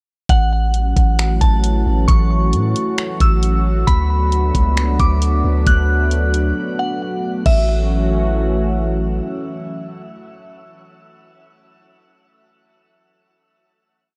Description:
hip hop, atmospheric cloud-rap; 134 BPM; 4/4; half-time; A major; A4 = 439 Hz
glassy synth bell; melody; 0.3-8.8 s; E5 to F#6; -26 LUFS; equal; chorus, low-pass filter, delay
dark analog pad; sustained chords; 0.3-10.8 s; E3 to F#4; -25 LUFS; equal; chorus, sidechain pumping
long sustained 808-style bass; bass; 0.3-9.2 s; A1 to A2; -19 LUFS; equal
trap drum kit; drums; 0.3-7.6 s; crash cymbal, finger snaps, hi-hat, kick drum; -19 LUFS; equal; vintage 12-bit sampler grit
little or no reverb; -17 LUFS; mono
0.3-7.5 verse; 7.5-11.0 final chord
break 6.6-7.5
0.3 A6; 3.9 D6; 7.5 A6

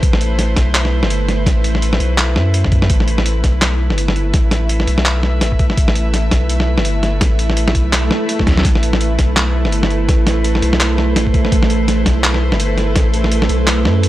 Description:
half-time drum and bass; 167 BPM; 4/4; swing 59% on 16ths, half-time; A minor; A4 = 441 Hz
bowed-like drone; sustained chords; 0.0-14.1 s; A3 to E5; -20 LUFS; right 2 dB; built-in reverb, sidechain pumping
saturated sub bass; bass; 0.0-14.1 s; G1 to F#2; -16 LUFS; equal
boom bap sampler-style drum kit; drums; 0.0-14.1 s; handclaps, hi-hat, snare drum; -18 LUFS; equal; studio reverb
electronic kick drum; drums; 0.0-13.0 s; -16 LUFS; equal; studio reverb
swell; sound effects; 8.0-8.6 s; -22 LUFS; equal
flickering grainy texture; texture; 9.3-14.1 s; A4; -28 LUFS; right 3 dB; built-in reverb
little or no reverb; dry, gritty hardware recording, cassette tape; -12 LUFS; side -15 dB against mid
0.0-14.1 A section
swell 8.0-8.6; drum fill 8.5
0.0 Amadd9

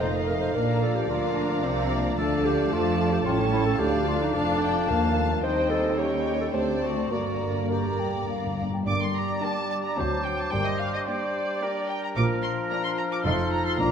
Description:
quick classical-period movement for symphony orchestra; 110 BPM; 3/4; rubato; G minor; A4 = 440 Hz
muted studio violin section; melody; 0.0-13.9 s; D5 to D6; -34 LUFS; left 1 dB
mellow clarinet; second line; 0.0-13.9 s; D4 to C5; -31 LUFS; left 1 dB
mellow hollow silver concert flute; second line; 0.0-13.9 s; D5 to F6; -34 LUFS; left 1 dB
muted chamber violin section; second line; 0.0-13.7 s; F4 to A5; -34 LUFS; equal
dark bassoon; accompaniment; 0.0-13.9 s; F3 to Db4; -31 LUFS; right 2 dB
muted chamber viola section; accompaniment; 0.0-13.7 s; G3 to Eb4; -33 LUFS; right 1 dB
mellow French horn section; sustained chords; 0.0-13.9 s; D3 to Eb4; -33 LUFS; left 4 dB
muted chamber cello section; bass; 0.0-13.9 s; D2 to F3; -32 LUFS; right 1 dB
muted chamber double bass section; bass; 0.0-13.9 s; F1 to F2; -31 LUFS; right 2 dB
timpani; percussion; 2.2-3.0, 7.1-8.8, 13.8-13.9 s; G2 to D3; -35 LUFS; left 3 dB
warm oboe; second line; 8.9-13.9 s; A4 to D5; -34 LUFS; equal
wet scoring stage reverb, RT60 1.9 s; minimal, uncompressed stereo recording; -23 LUFS; side -7 dB against mid
0.0-8.9 A section; 8.9-13.9 A section
timpani fill 7.1-8.9
0.0 F7; 0.5 Bb; 2.2 Dm; 3.3 A7; 3.8 Dm; 5.4 Cm/Eb; 6.0 Eb7; 6.6 D7; 7.1 Gm; 10.0 D7; 10.5 Gm; 12.2 Bb; 13.3 F7

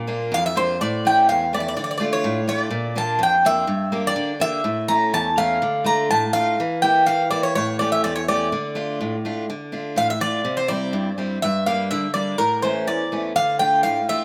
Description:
greek folk; 124 BPM; 2/4; straight; D harmonic minor, D minor from 9.5 s; A4 = 440 Hz
picked steel-string acoustic guitar; accompaniment; 0.0-14.2 s; E2 to G4; -27 LUFS; equal
Greek bouzouki; melody; 0.3-14.2 s; Bb4 to Bb5; -22 LUFS; equal
moderate plate reverb, RT60 2.7 s; -21 LUFS; mono
0.0-1.8 A section; 1.8-9.5 B section; 9.5-14.2 A section
0.0 Bb; 0.8 A; 1.8 Dm; 2.7 Bb; 3.7 Gm; 4.7 A; 5.6 Dm; 6.6 Edim; 7.6 A7; 8.5 Dm; 10.5 C; 11.4 Gm; 12.4 A; 13.4 Dm

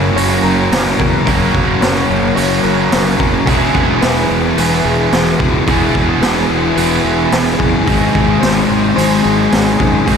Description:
rock, shoegaze and dream pop; 109 BPM; 4/4; straight; E lydian; A4 = 441 Hz
direct-recorded clean electric guitar; arpeggios; 0.0-10.2 s; G#4 to C#5; -21 LUFS; left 6 dB; lush chorus, analog delay
cranked stack guitar; riff; 0.0-10.2 s; F#2 to E4; -21 LUFS; right 1 dB; overdrive, analog chorus
overdriven electric guitar; riff; 0.0-10.2 s; E2 to G#4; -17 LUFS; right 9 dB; reverse reverb
thick fuzz guitar; riff; 0.0-10.2 s; E2 to C#4; -16 LUFS; left 7 dB; distortion, wide subtle chorus
fuzz fingered electric bass; bass; 0.0-10.2 s; E1 to F#2; -20 LUFS; equal; overdrive
raw garage drum kit; drums; 0.2-10.2 s; hi-hat, kick drum, snare drum; -18 LUFS; equal
wet huge ambient reverb, RT60 7.5 s; dreamy mix soaked in reverb; -11 LUFS; side -6 dB against mid
0.0-10.2 A section
0.0 F#; 3.5 E; 7.9 G#7

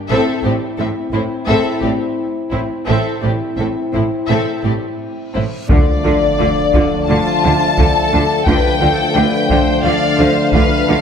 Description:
cinematic, epic orchestral film score; 87 BPM; 4/4; straight; D dorian from 5.7 s; A4 = 440 Hz
warm symphonic violin section; melody; 0.1-11.0 s; C5 to A5; -19 LUFS; left 5 dB
warm symphonic violin section; second line; 0.1-11.0 s; E4 to D5; -22 LUFS; left 3 dB
warm symphonic viola section; accompaniment; 0.1-11.0 s; A3 to F4; -24 LUFS; right 1 dB
mellow French horn section; sustained chords; 0.1-11.0 s; A3 to E4; -21 LUFS; left 3 dB
bright studio cello section; bass; 0.1-11.0 s; A2 to D3; -21 LUFS; right 3 dB
warm studio double bass section; bass; 0.1-11.0 s; A1 to D2; -22 LUFS; right 3 dB
reverse cymbal and sub drop; sound effects; 5.4-8.5 s; -26 LUFS; equal
warm trombone section; sustained chords; 5.7-11.0 s; D3 to F3; -21 LUFS; right 4 dB
taiko ensemble; drums; 5.7-11.0 s; -17 LUFS; equal
moderate concert hall reverb, RT60 2.1 s; -13 LUFS; side -7 dB against mid
0.0-5.7 A section; 5.7-11.0 B section
build-up 0.0-5.7; reverse cymbal 5.4; impact 5.7-8.5
0.1 Am; 5.7 Dm

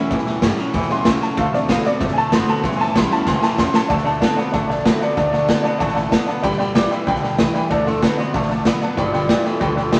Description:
rockabilly; 189 BPM; 4/4; straight; D mixolydian; A4 = 442 Hz
honky-tonk upright piano; accompaniment; 0.0-10.0 s; C#3 to C6; -25 LUFS; equal
picked steel-string acoustic guitar; accompaniment; 0.0-10.0 s; A2 to F#4; -28 LUFS; equal
twangy electric guitar; riff; 0.0-10.0 s; G2 to B3; -27 LUFS; equal
upright bass; bass; 0.1-9.9 s; F#1 to A2; -30 LUFS; equal
raw garage drum kit; drums; 0.1-10.0 s; hi-hat, kick drum, snare drum; -22 LUFS; equal
electric guitar through a small old amp; melody; 4.1-10.0 s; F4 to A5; -25 LUFS; equal
moderate studio reverb, RT60 0.9 s; vinyl crackle; -18 LUFS; mono
0.0-3.9 A section; 3.9-10.0 B section
honky-tonk piano solo 0.0-3.9; drum fill 3.3-3.9; honky-tonk piano fill 6.0-6.4
0.0 A7; 1.4 D7; 2.6 A7; 3.9 D7; 6.4 G7; 7.7 D7; 9.0 G7

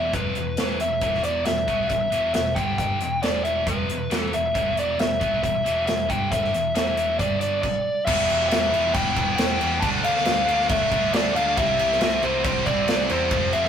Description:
hard rock; 136 BPM; 4/4; straight; E phrygian; A4 = 440 Hz
biting lead guitar; melody; 0.0-13.7 s; B4 to A5; -23 LUFS; left 1 dB; overdrive
scooped high-gain guitar; riff; 0.0-13.7 s; E2 to D4; -28 LUFS; right 1 dB; distortion
overdriven picked electric bass; bass; 0.0-13.7 s; E1 to E2; -33 LUFS; equal
big rock drum kit; drums; 0.1-13.7 s; crash cymbal, hi-hat, kick drum, snare drum; -26 LUFS; right 1 dB
high-gain distorted guitar; riff; 8.1-13.7 s; C3 to F4; -29 LUFS; equal; distortion
light reverb; rough rehearsal-room recording; -20 LUFS; side -8 dB against mid
0.0-8.1 A section; 8.1-13.7 B section
0.0 E5; 2.6 G5; 3.0 E5; 6.1 G5; 6.5 E5; 7.2 G5; 8.1 Em; 9.8 Dm; 11.6 C

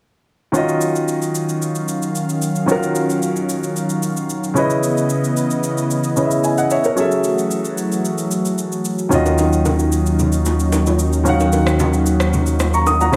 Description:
amapiano; 112 BPM; 4/4; straight; A4 = 440 Hz
warm concert grand piano; accompaniment; 0.5-13.2 s; Db3 to Eb6; -21 LUFS; equal
warm analog pad; sustained chords; 0.5-13.2 s; Db3 to F5; -24 LUFS; equal; chorus
electronic shaker and rim click; drums; 0.5-13.2 s; -30 LUFS; equal; overdrive
warm sub bass; bass; 9.1-13.2 s; Eb2; -20 LUFS; equal
congas and bongos; percussion; 9.1-13.1 s; -26 LUFS; equal
light reverb; studio ambience; -18 LUFS; mono
0.5-13.2 A section
0.5 Ebm9; 4.6 Dbm9; 7.0 Gbm9; 9.1 Ebm9

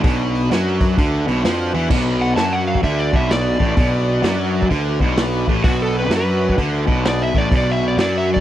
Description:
blues rock power trio and southern rock; 128 BPM; 4/4; swing 64% on 8ths; B minor; A4 = 440 Hz
overdriven tonewheel organ; sustained chords; 0.0-8.4 s; D4 to D5; -30 LUFS; right 2 dB
overdriven electric guitar; riff; 0.0-8.4 s; A2 to F#3; -20 LUFS; equal
fuzz picked electric bass; bass; 0.0-8.4 s; A1 to F#2; -21 LUFS; equal; overdrive
vintage drum kit; drums; 0.0-8.4 s; crash cymbal, hi-hat, kick drum, snare drum; -19 LUFS; equal
overdriven slide guitar; melody; 2.2-8.4 s; F#4 to A5; -22 LUFS; equal
little or no reverb; dry, close 1970s-style studio recording; -15 LUFS; side -12 dB against mid
0.0-1.9 A section; 1.9-8.4 B section
electric slide guitar solo 1.9-8.4
0.0 Bm

